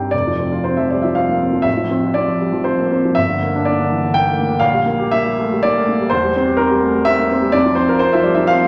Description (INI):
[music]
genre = classical, romantic character piece for solo piano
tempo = 106-128 BPM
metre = 3/4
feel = rubato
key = F major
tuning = A4 = 440 Hz
[part]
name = warm baby grand piano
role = solo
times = 0.0-8.7 s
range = F1 to C6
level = -16 LUFS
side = equal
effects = none
[sound]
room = wet recital hall reverb, RT60 1.5 s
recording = none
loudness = -17 LUFS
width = mono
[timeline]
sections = 0.1-8.7 A section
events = none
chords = 0.1 F5; 1.7 F/A; 3.2 Gm; 4.6 Gm/Bb; 6.1 C7/E; 7.6 F5